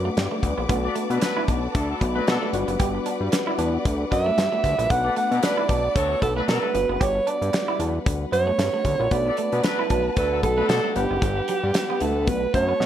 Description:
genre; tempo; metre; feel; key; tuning
early-eighties boogie funk; 114 BPM; 4/4; swing 56% on 16ths; B minor; A4 = 439 Hz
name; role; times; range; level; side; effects
funky polysynth comp; accompaniment; 0.0-12.9 s; G3 to F#5; -30 LUFS; left 3 dB; chorus
warm studio string section; sustained chords; 0.0-12.9 s; G4 to D6; -33 LUFS; left 4 dB; none
fat analog bass; bass; 0.0-12.9 s; F#1 to B2; -26 LUFS; left 1 dB; none
clean electric guitar; riff; 0.1-12.8 s; F#3 to G4; -32 LUFS; right 5 dB; analog chorus
damped 70s drum kit; drums; 0.2-12.9 s; hi-hat, kick drum, snare drum; -25 LUFS; equal; gated reverb
clear horn section; second line; 0.8-10.9 s; F#3 to D5; -30 LUFS; left 3 dB; none
breathy alto saxophone; melody; 4.1-12.9 s; G4 to F#5; -23 LUFS; right 3 dB; slapback echo
room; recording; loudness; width
small room reverb; none; -20 LUFS; side -10 dB against mid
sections
0.0-12.9 A section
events
none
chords
0.0 Gmaj7; 0.7 Bm7; 2.5 Gmaj7; 4.9 Bm7; 6.7 Gmaj7; 9.1 Bm7; 11.0 Gmaj7; 12.3 Bm7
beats
0.17 | 0.69 1.22 1.75 2.27 | 2.80 3.33 3.85 4.38 | 4.91 5.43 5.96 6.48 | 7.01 7.54 8.06 8.59 | 9.12 9.64 10.17 10.69 | 11.22 11.75 12.27 12.80

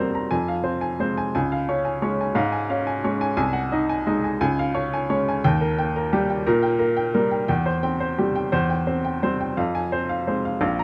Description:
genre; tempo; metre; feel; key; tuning
classical, piano waltz; 175 BPM; 3/4; rubato; F minor; A4 = 439 Hz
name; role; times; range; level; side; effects
warm upright piano; solo; 0.0-10.8 s; Bb1 to Bb5; -23 LUFS; equal; none
room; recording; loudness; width
light reverb; close, detailed microphones; -23 LUFS; mono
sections
0.0-10.8 A section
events
none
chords
0.3 Fm; 1.4 Db; 3.4 Ab7/C; 4.4 Db; 5.4 Eb; 7.5 C/E; 9.6 Fm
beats
| 0.32 0.66 1.01 | 1.35 1.69 2.03 | 2.36 2.70 3.04 | 3.38 3.72 4.07 | 4.41 4.75 5.10 | 5.44 5.77 6.12 | 6.46 6.80 7.15 | 7.50 7.83 8.18 | 8.53 8.88 9.23 | 9.58 9.93 10.28 | 10.62

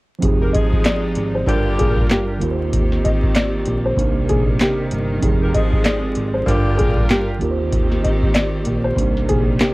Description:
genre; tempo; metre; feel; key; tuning
hip hop, boom-bap hip-hop; 96 BPM; 4/4; swing 59% on 16ths; F dorian; A4 = 440 Hz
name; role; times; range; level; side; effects
mellow tine electric piano; accompaniment; 0.2-9.7 s; G2 to C5; -23 LUFS; right 3 dB; medium stereo tremolo
rich studio string section; sustained chords; 0.2-9.7 s; C3 to Bb4; -26 LUFS; equal; none
deep dub fingered electric bass; bass; 0.2-9.6 s; F1 to Eb2; -23 LUFS; equal; none
booming analog drum machine; drums; 0.2-9.7 s; handclaps, hi-hat, kick drum, snare drum; -19 LUFS; equal; cassette tape
mellow saxophone section; stabs; 0.4-7.1 s; D3 to Bb4; -27 LUFS; left 1 dB; tape echo
dark upright piano; melody; 0.5-9.7 s; G4 to Eb5; -24 LUFS; left 2 dB; cassette tape
finger snap; percussion; 0.9-9.7 s; none; -39 LUFS; right 6 dB; none
room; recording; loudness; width
light reverb; home recording on cassette, vinyl crackle; -16 LUFS; side -20 dB against mid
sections
0.2-9.7 A section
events
none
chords
0.2 Fm7; 1.5 Gm7; 2.4 Eb6; 4.0 Cm7; 5.2 Fm7; 6.5 Gm7; 7.4 Eb6; 9.0 Cm7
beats
| 0.23 0.85 1.48 2.10 | 2.73 3.35 3.98 4.60 | 5.23 5.85 6.48 7.10 | 7.73 8.35 8.98 9.60

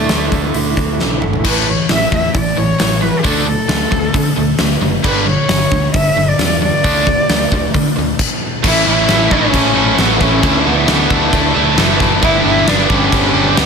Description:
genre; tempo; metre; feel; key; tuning
quiet-loud alternative rock; 134 BPM; 4/4; straight; A mixolydian; A4 = 440 Hz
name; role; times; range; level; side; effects
rich cello; melody; 0.0-13.7 s; A3 to E5; -18 LUFS; equal; analog delay
electric guitar through a small old amp; arpeggios; 0.0-1.4 s; D3 to E4; -24 LUFS; left 1 dB; tremolo, analog delay
overdriven semi-hollow guitar; riff; 0.0-13.7 s; G2 to A4; -18 LUFS; right 10 dB; none
fingered electric bass; bass; 0.0-13.7 s; F#1 to D3; -20 LUFS; equal; none
huge arena drum kit; drums; 0.1-13.7 s; crash cymbal, hi-hat, kick drum, snare drum, toms; -16 LUFS; left 1 dB; none
cranked stack guitar; riff; 1.4-13.7 s; G2 to E4; -19 LUFS; left 12 dB; overdrive
fuzz guitar; riff; 8.6-13.7 s; G2 to A4; -20 LUFS; equal; none
room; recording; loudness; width
light reverb, small room ambience; none; -11 LUFS; side -6 dB against mid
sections
0.0-1.4 A section; 1.4-8.6 B section; 8.6-13.7 C section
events
drum fill 1.0-1.4; stop 8.2-8.6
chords
0.0 Dsus2; 1.4 A; 3.2 D5; 5.0 G5; 6.8 D5; 8.6 A; 10.4 Dsus2; 12.2 G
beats
0.09 0.54 0.99 | 1.44 1.90 2.35 2.80 | 3.25 3.70 4.15 4.59 | 5.04 5.50 5.94 6.39 | 6.84 7.29 7.74 8.19 | 8.64 9.09 9.54 9.98 | 10.43 10.88 11.33 11.78 | 12.22 12.67 13.12 13.57

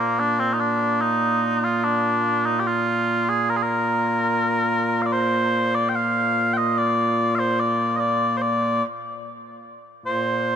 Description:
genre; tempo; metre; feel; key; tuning
scottish traditional, Scottish pipe music; 73 BPM; 3/4; straight; Bb major; A4 = 440 Hz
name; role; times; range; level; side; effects
mellow small bagpipes; solo; 0.0-10.6 s; Bb2 to G5; -20 LUFS; equal; none
room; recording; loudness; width
moderate huge ambient reverb, RT60 4.5 s; minimal, uncompressed stereo recording; -19 LUFS; side -8 dB against mid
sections
0.0-5.1 A section; 5.1-10.6 B section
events
none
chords
none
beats
| 0.20 1.02 1.84 | 2.66 3.48 4.31 | 5.13 5.95 6.77 | 7.59 8.42 9.24 | 10.06

